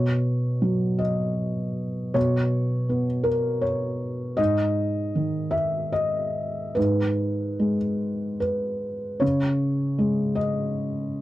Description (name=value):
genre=neoclassical minimalist piano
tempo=71-82 BPM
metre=3/4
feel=rubato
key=B major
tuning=A4 = 440 Hz
part: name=felt-muted upright piano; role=solo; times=0.0-11.2 s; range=G#2 to E5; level=-22 LUFS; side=equal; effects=none
room=little or no reverb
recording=dry, close 1970s-style studio recording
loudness=-22 LUFS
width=side -15 dB against mid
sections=0.0-11.2 A section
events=none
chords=0.0 Bsus2; 4.4 G#m; 9.2 C#5